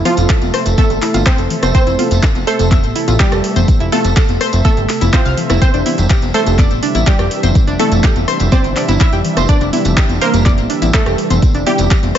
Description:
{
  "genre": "progressive house",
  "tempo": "124 BPM",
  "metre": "4/4",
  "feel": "straight",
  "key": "F major",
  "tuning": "A4 = 440 Hz",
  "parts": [
    { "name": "warm analog pad", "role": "sustained chords", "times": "0.0-12.2 s", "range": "C3 to E5", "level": "-22 LUFS", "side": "right 2 dB", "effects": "chorus, sidechain pumping" },
    { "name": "plucky analog bass", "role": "bass", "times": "0.0-12.1 s", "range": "F1 to C2", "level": "-16 LUFS", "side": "equal", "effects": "sidechain pumping" },
    { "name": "downlifter", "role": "sound effects", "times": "0.0-1.7 s", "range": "none", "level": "barely audible", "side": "none", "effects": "none" },
    { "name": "wide unison pluck", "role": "melody", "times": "0.1-12.2 s", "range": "F3 to E5", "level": "-19 LUFS", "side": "right 2 dB", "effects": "sidechain pumping, ping-pong delay" },
    { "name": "analog pluck", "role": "arpeggios", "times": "0.1-12.2 s", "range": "D4 to F5", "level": "-21 LUFS", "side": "equal", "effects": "chorus, vintage 12-bit sampler grit, sidechain pumping, ping-pong delay" },
    { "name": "deep house drum kit", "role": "drums", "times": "0.1-12.2 s", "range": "handclaps, hi-hat", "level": "-22 LUFS", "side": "equal", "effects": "none" },
    { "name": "electronic congas and rim click", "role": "percussion", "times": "0.1-12.2 s", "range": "none", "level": "-22 LUFS", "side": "left 4 dB", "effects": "sidechain pumping on snare, sidechain pumping on perc" },
    { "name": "tambourine", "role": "percussion", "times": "0.2-12.1 s", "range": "none", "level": "-29 LUFS", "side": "right 4 dB", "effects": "none" },
    { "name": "electronic kick drum", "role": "drums", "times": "0.3-12.0 s", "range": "none", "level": "-12 LUFS", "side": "equal", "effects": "none" }
  ],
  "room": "digital ambience",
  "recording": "nothing above 7.7 kHz",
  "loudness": "-11 LUFS",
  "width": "side -10 dB against mid",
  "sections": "0.0-12.2 A section",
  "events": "none",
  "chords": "0.0 Fmaj7; 5.6 Cadd9/F"
}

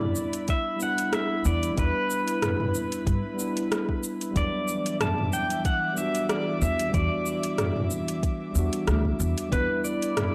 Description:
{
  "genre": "sunset chillout",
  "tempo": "93 BPM",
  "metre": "4/4",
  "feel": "swing 55% on 16ths",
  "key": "E minor",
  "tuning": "A4 = 440 Hz",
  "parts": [
    { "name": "pedal steel guitar", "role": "melody", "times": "0.0-10.3 s", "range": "B4 to A5", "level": "-32 LUFS", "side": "equal", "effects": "analog delay" },
    { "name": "mellow tine electric piano", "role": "accompaniment", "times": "0.0-10.3 s", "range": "F#3 to F#4", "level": "-33 LUFS", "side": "equal", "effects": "analog delay" },
    { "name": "airy breathy pad", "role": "sustained chords", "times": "0.0-10.3 s", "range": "E3 to D6", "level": "-37 LUFS", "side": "equal", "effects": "chorus" },
    { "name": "deep house drum kit", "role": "drums", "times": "0.0-10.3 s", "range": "hi-hat, rim click, shaker, toms", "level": "-32 LUFS", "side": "equal", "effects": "overdrive" },
    { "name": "electronic kick drum", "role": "drums", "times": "0.5-9.7 s", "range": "none", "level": "-29 LUFS", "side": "equal", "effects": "overdrive" },
    { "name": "upright bass", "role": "bass", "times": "1.5-9.7 s", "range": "D2 to G2", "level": "-29 LUFS", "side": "equal", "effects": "none" }
  ],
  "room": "light reverb",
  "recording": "dry, gritty hardware recording",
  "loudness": "-27 LUFS",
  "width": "mono",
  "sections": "0.0-10.3 A section",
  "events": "none",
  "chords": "0.0 Em7"
}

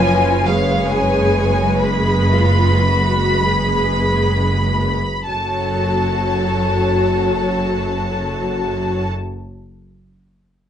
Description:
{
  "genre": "classical, slow romantic movement for string orchestra",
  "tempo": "30-46 BPM (dotted quarters)",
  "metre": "12/8",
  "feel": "rubato",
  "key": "F# minor",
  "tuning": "A4 = 439 Hz",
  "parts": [
    { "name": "warm chamber violin section", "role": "melody", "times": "0.0-9.1 s", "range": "E#5 to B5", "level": "-21 LUFS", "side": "left 2 dB", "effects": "none" },
    { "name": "warm studio violin section", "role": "second line", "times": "0.0-9.1 s", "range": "A4 to C#5", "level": "-24 LUFS", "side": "left 1 dB", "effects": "none" },
    { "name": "rich symphonic viola section", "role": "accompaniment", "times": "0.0-9.1 s", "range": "E#3 to G#4", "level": "-22 LUFS", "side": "equal", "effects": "none" },
    { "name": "rich chamber double bass section", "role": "bass", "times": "0.0-9.1 s", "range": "F#1", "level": "-22 LUFS", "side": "right 1 dB", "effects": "none" },
    { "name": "rich studio cello section", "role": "bass", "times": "0.0-9.1 s", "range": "F#2", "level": "-21 LUFS", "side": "right 2 dB", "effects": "none" }
  ],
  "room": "moderate studio ambience, RT60 0.5 s",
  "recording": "nothing above 10.5 kHz",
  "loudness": "-15 LUFS",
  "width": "side -9 dB against mid",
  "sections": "0.0-5.3 A section; 5.3-10.7 B section",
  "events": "slowing down 0.0-5.3",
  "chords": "0.0 C#7/F#; 5.3 F#m"
}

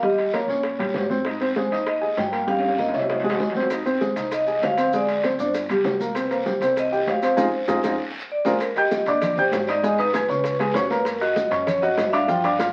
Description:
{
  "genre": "Afro-Cuban jazz",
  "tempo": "196 BPM",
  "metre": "4/4",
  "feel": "straight",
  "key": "C minor",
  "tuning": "A4 = 441 Hz",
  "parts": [
    { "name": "vibraphone with medium mallets", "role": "melody", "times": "0.0-12.7 s", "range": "Bb4 to G5", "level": "-26 LUFS", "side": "equal", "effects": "none" },
    { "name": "warm baby grand piano", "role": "accompaniment", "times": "0.0-12.7 s", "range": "F3 to Ab6", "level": "-26 LUFS", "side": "equal", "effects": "none" },
    { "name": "upright bass", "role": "bass", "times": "0.0-12.7 s", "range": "G1 to G2", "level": "-40 LUFS", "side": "equal", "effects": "none" },
    { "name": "bongos", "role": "percussion", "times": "0.0-12.7 s", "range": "none", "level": "-35 LUFS", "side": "equal", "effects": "none" },
    { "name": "congas", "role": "percussion", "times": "0.0-12.7 s", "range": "none", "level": "-37 LUFS", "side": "equal", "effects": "none" },
    { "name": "guiro", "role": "percussion", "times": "0.0-12.7 s", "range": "none", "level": "-42 LUFS", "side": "equal", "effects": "none" },
    { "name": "timbales", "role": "percussion", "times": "0.2-12.7 s", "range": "none", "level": "-33 LUFS", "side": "equal", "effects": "none" },
    { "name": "maracas", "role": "percussion", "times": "3.7-12.7 s", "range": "none", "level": "-47 LUFS", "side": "equal", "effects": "none" }
  ],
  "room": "wet studio reverb, RT60 0.8 s",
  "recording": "very old 78 rpm record, vinyl crackle",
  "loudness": "-22 LUFS",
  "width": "mono",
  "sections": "0.0-8.6 A section; 8.6-12.7 B section",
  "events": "drum fill 2.5-3.7, 7.8-8.6; band accent 7.4-8.6",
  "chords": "0.0 Eb7; 1.3 Abmaj9; 2.5 Gm7b5; 3.1 Caug; 3.7 Fm7; 4.9 Abmaj7#11; 5.5 G; 6.2 Cm7; 7.4 Fm7; 8.0 Bb5; 8.6 Ebmaj7; 9.8 Abm; 10.4 Db5; 11.1 Gb6"
}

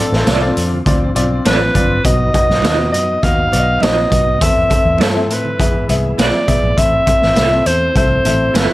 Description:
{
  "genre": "uptempo 1960s-style soul",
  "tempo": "102 BPM",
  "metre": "4/4",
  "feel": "straight",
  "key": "A minor",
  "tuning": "A4 = 440 Hz",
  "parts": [
    { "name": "breathy alto saxophone", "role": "melody", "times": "0.0-8.7 s", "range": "A4 to F5", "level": "-16 LUFS", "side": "equal", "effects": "none" },
    { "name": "warm grand piano", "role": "accompaniment", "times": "0.0-8.7 s", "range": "A2 to E5", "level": "-20 LUFS", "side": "left 2 dB", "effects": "none" },
    { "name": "overdriven tonewheel organ", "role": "sustained chords", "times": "0.0-8.7 s", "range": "F3 to E4", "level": "-28 LUFS", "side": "right 1 dB", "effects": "none" },
    { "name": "vintage muted fingered electric bass", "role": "bass", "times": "0.1-8.7 s", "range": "G1 to A2", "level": "-19 LUFS", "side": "equal", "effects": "none" },
    { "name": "raw garage drum kit", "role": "drums", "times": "0.1-8.7 s", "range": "hi-hat, kick drum, snare drum", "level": "-17 LUFS", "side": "equal", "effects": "none" },
    { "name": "electric guitar through a small old amp", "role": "stabs", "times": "0.3-8.7 s", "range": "C4 to E5", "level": "-21 LUFS", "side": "right 7 dB", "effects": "tremolo" },
    { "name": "congas", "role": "percussion", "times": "0.3-8.7 s", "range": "none", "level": "-26 LUFS", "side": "right 6 dB", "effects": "none" }
  ],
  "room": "little or no reverb",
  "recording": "none",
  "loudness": "-12 LUFS",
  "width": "side -17 dB against mid",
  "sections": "0.0-8.7 A section",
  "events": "none",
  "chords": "0.0 Dm7/A; 2.0 B; 4.4 Am/E; 5.6 E; 6.8 Am"
}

